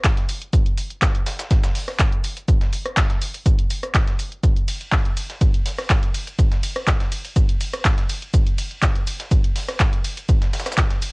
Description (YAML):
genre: house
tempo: 123 BPM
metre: 4/4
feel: straight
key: none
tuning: none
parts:
  - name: dusty soul sampler-style drum kit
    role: drums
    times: 0.0-11.1 s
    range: hi-hat, shaker, snare drum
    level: -34 LUFS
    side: equal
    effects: overdrive, high-pass filter on hats, cassette tape, high-pass filter on snare, high-pass filter on perc
  - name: electronic kick drum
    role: drums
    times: 0.0-10.9 s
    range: none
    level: -18 LUFS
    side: equal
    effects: cassette tape
  - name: punchy analog drum machine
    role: drums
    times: 0.0-11.1 s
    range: handclaps, hi-hat, ride cymbal, rim click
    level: -25 LUFS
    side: equal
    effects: cassette tape
room: little or no reverb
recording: home recording on cassette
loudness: -18 LUFS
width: side -31 dB against mid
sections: 0.0-11.1 A section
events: none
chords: none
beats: 0.04 | 0.53 1.02 1.51 2.00 | 2.48 2.97 3.46 3.95 | 4.43 4.92 5.41 5.90 | 6.39 6.87 7.36 7.85 | 8.34 8.82 9.31 9.80 | 10.29 10.78